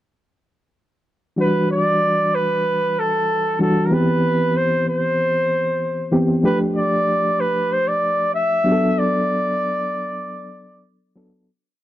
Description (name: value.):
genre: soul.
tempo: 95 BPM.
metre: 4/4.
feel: straight.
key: E minor.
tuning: A4 = 440 Hz.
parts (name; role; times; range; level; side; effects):
warm flugelhorn; melody; 1.4-10.9 s; A4 to E5; -19 LUFS; equal; none.
reed electric piano; accompaniment; 1.4-11.5 s; E3 to A4; -21 LUFS; equal; fast tremolo.
room: small room ambience.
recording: dry, close 1970s-style studio recording.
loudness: -17 LUFS.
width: side -13 dB against mid.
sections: 1.4-11.5 verse.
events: fade-out 9.0-11.5.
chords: 1.4 Em9; 3.9 Cmaj7; 6.4 F69; 8.7 Bm7.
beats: | 1.38 2.01 2.64 3.28 | 3.91 4.54 5.17 5.81 | 6.44 7.07 7.70 8.33 | 8.96 9.60 10.23 10.86.